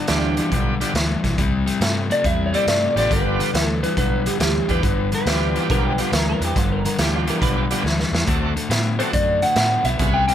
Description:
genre	electric blues shuffle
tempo	139 BPM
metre	4/4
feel	swing 67% on 8ths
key	G mixolydian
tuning	A4 = 445 Hz
part	clean electric guitar	second line	0.0-0.5, 5.7-7.8 s	D4 to B4	-27 LUFS	right 4 dB	analog chorus
part	overdriven semi-hollow guitar	riff	0.0-10.3 s	G2 to B3	-24 LUFS	left 4 dB	none
part	bright tonewheel organ	accompaniment	0.1-10.3 s	G3 to B4	-27 LUFS	right 4 dB	slow rotary speaker, overdrive
part	vintage muted fingered electric bass	bass	0.1-10.3 s	G1 to A2	-24 LUFS	equal	none
part	raw garage drum kit	drums	0.1-10.3 s	hi-hat, kick drum, snare drum	-23 LUFS	right 1 dB	none
part	electric slide guitar	melody	2.1-10.3 s	G4 to G5	-22 LUFS	equal	none
room	light reverb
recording	none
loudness	-17 LUFS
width	side -10 dB against mid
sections	0.0-10.3 A section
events	drum fill 7.8-8.3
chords	0.0 G7; 1.4 C7; 3.1 G7; 8.3 D7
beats	0.08 0.51 0.95 | 1.38 1.81 2.24 2.67 | 3.10 3.54 3.97 4.40 | 4.83 5.26 5.69 6.12 | 6.55 6.99 7.42 7.85 | 8.28 8.71 9.14 9.57 | 10.00

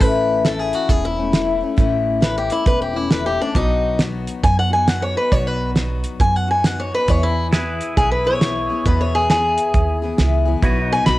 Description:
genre	honky-tonk and classic country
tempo	136 BPM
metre	4/4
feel	swing 63% on 8ths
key	E major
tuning	A4 = 440 Hz
part	picked swing-style acoustic guitar	melody	0.0-11.2 s	D4 to B5	-20 LUFS	equal	cassette tape
part	picked steel-string acoustic guitar	accompaniment	0.0-11.2 s	E2 to G#4	-23 LUFS	left 5 dB	none
part	upright bass	bass	0.0-11.2 s	E1 to F#2	-22 LUFS	right 1 dB	none
part	cloth-damped thuddy drum kit	drums	0.0-11.2 s	hi-hat, kick drum, snare drum	-18 LUFS	right 1 dB	cassette tape
part	pedal steel guitar	sustained chords	7.5-11.2 s	D#4 to B4	-28 LUFS	right 1 dB	none
room	light reverb, small room ambience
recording	home recording on cassette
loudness	-16 LUFS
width	side -16 dB against mid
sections	0.0-11.2 A section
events	steel-string acoustic guitar solo 0.0-11.2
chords	0.0 A; 3.5 B; 7.1 E; 10.6 B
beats	| 0.01 0.45 0.90 1.34 | 1.78 2.22 2.67 3.11 | 3.55 3.99 4.43 4.88 | 5.32 5.76 6.20 6.64 | 7.09 7.53 7.97 8.41 | 8.86 9.30 9.74 10.18 | 10.62 11.07

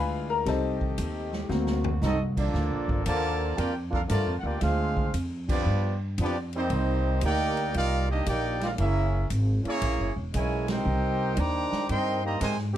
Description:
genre	jazz, big band swing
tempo	116 BPM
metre	4/4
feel	swing 67% on 8ths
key	G minor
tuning	A4 = 441 Hz
part	clear upright piano	accompaniment	0.0-1.9 s	F#3 to B5	-29 LUFS	left 5 dB	none
part	bright trombone section	sustained chords	0.0-2.5 s	D3 to G4	-39 LUFS	equal	none
part	upright bass	bass	0.0-12.8 s	E1 to Ab2	-28 LUFS	equal	none
part	swinging big-band drum kit	drums	0.5-12.8 s	crash cymbal, hi-hat, kick drum, ride cymbal, snare drum, toms	-35 LUFS	equal	none
part	clear trumpet section	melody	2.0-12.6 s	Bb3 to D6	-30 LUFS	right 1 dB	none
part	mellow trombone section	second line	2.0-12.8 s	C3 to G4	-31 LUFS	right 1 dB	none
room	light reverb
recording	dark, warm production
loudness	-25 LUFS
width	side -11 dB against mid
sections	0.0-2.5 A section; 2.5-12.8 B section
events	upright piano solo 0.0-2.5; drum fill 1.5-2.0; band accent 5.4, 10.6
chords	0.5 Am7b5; 1.5 D7b13; 2.5 Gm9; 4.6 Dm7b5; 5.7 G7; 6.7 Cm11; 8.8 F#9; 10.8 Abmaj9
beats	| 0.46 0.98 1.50 2.02 | 2.54 3.06 3.58 4.10 | 4.62 5.14 5.66 6.17 | 6.69 7.21 7.73 8.25 | 8.77 9.29 9.81 10.33 | 10.85 11.37 11.89 12.41

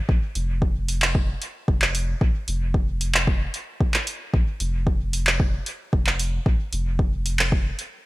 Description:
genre	dub techno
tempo	113 BPM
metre	4/4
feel	straight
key	unclear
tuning	A4 = 440 Hz
part	pure sine sub bass	bass	0.1-7.7 s	F1 to Bb1	-26 LUFS	equal	sidechain pumping
part	electronic kick drum	drums	0.1-7.6 s	none	-21 LUFS	equal	overdrive
part	punchy analog drum machine	drums	0.4-7.9 s	handclaps, hi-hat	-24 LUFS	right 1 dB	overdrive, dub echo
room	little or no reverb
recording	bright 1980s-style digital production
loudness	-21 LUFS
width	side -19 dB against mid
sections	0.0-8.1 A section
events	none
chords	none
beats	| 0.09 0.62 1.15 1.68 | 2.21 2.74 3.27 3.81 | 4.34 4.87 5.40 5.93 | 6.46 6.99 7.52

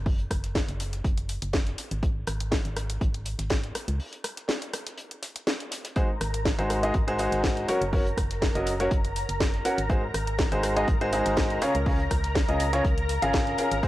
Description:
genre	piano house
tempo	122 BPM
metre	4/4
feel	swing 53% on 16ths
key	unclear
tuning	A4 = 440 Hz
part	organ-like FM bass	bass	0.0-13.8 s	Gb1 to Db2	-31 LUFS	equal	sidechain pumping
part	cloth-damped thuddy drum kit	drums	0.1-13.9 s	hi-hat, snare drum	-44 LUFS	left 1 dB	none
part	electronic kick drum	drums	0.1-13.9 s	none	-27 LUFS	equal	small room ambience
part	garage drum kit	drums	0.3-13.8 s	hi-hat, rim click, snare drum	-31 LUFS	equal	small room ambience
part	analog string pad	sustained chords	6.0-13.9 s	Bb4 to Bb5	-33 LUFS	left 1 dB	ensemble chorus, sidechain pumping, cassette tape
part	bright upright piano	riff	6.0-13.9 s	Db3 to Gb5	-27 LUFS	equal	sidechain pumping, cassette tape, tape echo
room	light reverb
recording	home recording on cassette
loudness	-24 LUFS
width	side -15 dB against mid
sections	0.0-13.9 A section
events	break 4.0-6.0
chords	0.0 N.C.; 6.0 Ab7; 7.7 Gb; 9.9 Ab7; 11.6 Db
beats	| 0.06 0.55 1.04 1.54 | 2.03 2.52 3.01 3.50 | 4.00 4.49 4.98 5.47 | 5.96 6.46 6.95 7.44 | 7.93 8.42 8.91 9.41 | 9.90 10.39 10.88 11.37 | 11.87 12.36 12.85 13.34 | 13.83

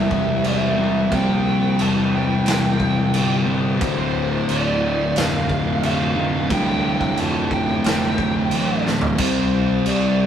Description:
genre	stoner and doom metal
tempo	89 BPM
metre	4/4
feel	straight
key	D minor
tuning	A4 = 439 Hz
part	fuzz lead guitar	melody	0.0-10.3 s	C5 to A5	-25 LUFS	right 1 dB	wah, distortion
part	thick fuzz guitar	riff	0.0-10.3 s	D2 to C4	-21 LUFS	left 3 dB	distortion
part	thick fuzz guitar	riff	0.0-10.3 s	D2 to C4	-25 LUFS	right 4 dB	distortion
part	fuzz fingered electric bass	bass	0.0-10.3 s	D1 to C2	-28 LUFS	equal	overdrive
part	raw garage drum kit	drums	0.1-10.0 s	crash cymbal, kick drum, snare drum, toms	-25 LUFS	right 1 dB	none
room	moderate stone room reverb, RT60 1.2 s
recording	rough rehearsal-room recording, tube saturation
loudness	-17 LUFS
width	side -9 dB against mid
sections	0.0-10.3 A section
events	drum fill 8.8-9.2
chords	0.0 C; 3.8 Dm; 9.2 C5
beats	0.46 | 1.13 1.80 2.47 3.14 | 3.81 4.49 5.16 5.83 | 6.50 7.17 7.84 8.51 | 9.18 9.86

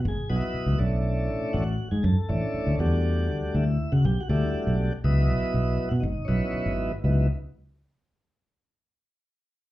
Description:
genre	electric jazz fusion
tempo	120 BPM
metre	4/4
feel	straight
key	C# phrygian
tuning	A4 = 441 Hz
part	fingered electric bass	bass	0.0-7.3 s	G#1 to C#3	-24 LUFS	equal	none
part	tonewheel organ	accompaniment	0.1-7.3 s	F#3 to D#5	-29 LUFS	equal	slow rotary speaker, slapback echo
room	little or no reverb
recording	live gig heard through the venue's PA, club reverb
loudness	-23 LUFS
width	side -16 dB against mid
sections	0.0-7.0 A section; 7.0-9.0 B section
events	none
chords	0.0 C#m11; 0.8 Bm11; 2.8 Em11; 5.0 C#m11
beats	0.04 0.54 | 1.04 1.54 2.04 2.54 | 3.04 3.54 4.04 4.54 | 5.04 5.54 6.04 6.54 | 7.04

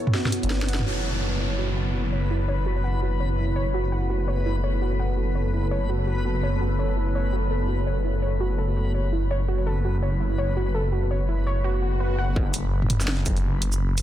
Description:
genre	half-time drum and bass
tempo	167 BPM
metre	4/4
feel	swing 59% on 16ths, half-time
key	F# minor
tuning	A4 = 440 Hz
part	deep dark ambient pad	sustained chords	0.0-12.4 s	B3 to C#5	-32 LUFS	equal	chorus, built-in reverb, vintage 12-bit sampler grit, sidechain pumping
part	warbly dusty pluck	arpeggios	0.0-12.3 s	E4 to F#5	-31 LUFS	right 2 dB	chorus, ping-pong delay
part	backwards swelling texture	texture	0.0-12.4 s	A4 to B4	-35 LUFS	left 4 dB	built-in reverb
part	drum and bass drum kit	drums	0.1-0.8, 12.5-14.0 s	hi-hat, shaker, snare drum, toms	-26 LUFS	right 1 dB	none
part	phased detuned saw bass	bass	0.4-14.0 s	F#1 to G1	-24 LUFS	equal	phaser, tube saturation
part	downlifter and swell	sound effects	0.9-3.7, 11.8-12.4 s	none	-33 LUFS	left 1 dB	none
part	electronic kick drum	drums	12.4-13.3 s	none	-25 LUFS	equal	distortion
room	light reverb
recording	dense, heavily limited modern master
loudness	-22 LUFS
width	side -12 dB against mid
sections	0.9-12.4 A section; 12.4-14.0 B section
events	drum fill 0.1-0.9; kick drops out 0.5-0.9; band accent 0.7; filter sweep on synth pluck 0.9-12.4; swell 11.8-12.4; drop 12.4-14.0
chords	0.0 F#m; 12.4 F#5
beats	0.15 0.51 | 0.86 1.22 1.58 1.94 | 2.30 2.66 3.02 3.38 | 3.74 4.10 4.46 4.82 | 5.18 5.54 5.89 6.25 | 6.61 6.97 7.33 7.69 | 8.05 8.41 8.77 9.13 | 9.49 9.85 10.21 10.56 | 10.93 11.28 11.64 12.00 | 12.36 12.72 13.08 13.44 | 13.80

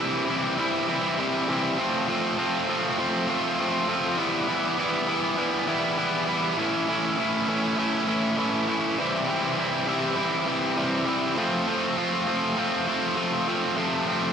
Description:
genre	rock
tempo	100 BPM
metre	4/4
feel	straight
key	unclear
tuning	A4 = 441 Hz
part	high-gain distorted guitar	solo	0.0-14.3 s	F2 to F4	-23 LUFS	equal	distortion, slapback echo
room	wet lush hall reverb, RT60 1.8 s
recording	big arena sound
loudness	-23 LUFS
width	side -7 dB against mid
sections	0.0-13.8 A section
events	none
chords	0.0 C; 1.8 F; 4.2 Em; 6.6 A; 9.0 C; 11.4 F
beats	0.59 1.19 | 1.79 2.39 2.99 3.59 | 4.19 4.79 5.39 5.99 | 6.59 7.19 7.79 8.39 | 8.98 9.58 10.18 10.78 | 11.38 11.97 12.57 13.17 | 13.76

